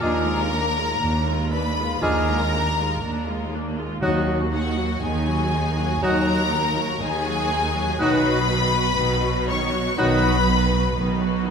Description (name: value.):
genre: classical.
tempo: 60 BPM.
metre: 4/4.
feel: rubato.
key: Eb minor.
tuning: A4 = 440 Hz.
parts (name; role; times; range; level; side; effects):
rich studio violin section; melody; 0.0-11.4 s; Gb5 to Db6; -26 LUFS; left 3 dB; none.
clear studio violin section; second line; 0.0-11.4 s; Gb4 to Db5; -28 LUFS; left 4 dB; none.
mellow oboe; second line; 0.0-10.4 s; D5 to Eb5; -34 LUFS; left 1 dB; none.
silver concert flute; second line; 0.0-10.4 s; F6 to Gb6; -32 LUFS; left 2 dB; none.
warm clarinet; second line; 0.0-10.4 s; Eb4 to F4; -31 LUFS; left 1 dB; none.
clear symphonic viola section; accompaniment; 0.0-11.5 s; Eb3 to Gb4; -29 LUFS; equal; none.
dark bassoon; accompaniment; 0.0-10.4 s; F#3 to Ab3; -30 LUFS; right 1 dB; none.
dark French horn section; sustained chords; 0.0-10.4 s; F3 to Eb4; -29 LUFS; left 3 dB; none.
clear trumpet; stabs; 0.0-10.4 s; Gb4 to Ab4; -30 LUFS; right 2 dB; none.
clear studio cello section; bass; 0.0-11.5 s; Eb2 to B2; -27 LUFS; right 2 dB; none.
clear studio double bass section; bass; 0.0-11.5 s; B1 to Eb2; -26 LUFS; right 3 dB; none.
timpani; percussion; 4.0-5.5 s; Eb3; -31 LUFS; left 1 dB; none.
room: wet scoring stage reverb, RT60 1.7 s.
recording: none.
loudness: -19 LUFS.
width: side -6 dB against mid.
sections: 0.0-11.5 A section.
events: none.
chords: 0.0 Bb7/Eb; 4.0 Ebm; 8.0 B.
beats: | 0.02 1.03 2.02 3.03 | 4.02 5.02 6.03 7.03 | 8.01 8.99 9.98 10.96.